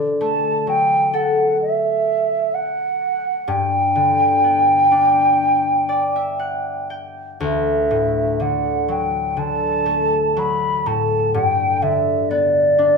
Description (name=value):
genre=celtic folk, Celtic slow air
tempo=59-65 BPM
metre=4/4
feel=rubato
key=D major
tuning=A4 = 440 Hz
part: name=concert harp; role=accompaniment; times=0.0-13.0 s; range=D2 to G5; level=-22 LUFS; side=left 4 dB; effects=none
part: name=mellow hollow wooden flute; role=melody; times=0.2-13.0 s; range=D5 to B5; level=-17 LUFS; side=right 1 dB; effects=none
room=moderate large studio reverb, RT60 0.8 s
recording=band playing live in one room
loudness=-16 LUFS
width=side -4 dB against mid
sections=0.0-7.4 A section; 7.4-13.0 B section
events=harp fill 5.4-7.4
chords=0.0 D; 3.5 G; 7.4 Dadd9; 11.3 G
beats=0.66 1.59 2.53 | 3.48 4.43 5.41 6.41 | 7.42 8.41 9.39 10.38 | 11.34 12.30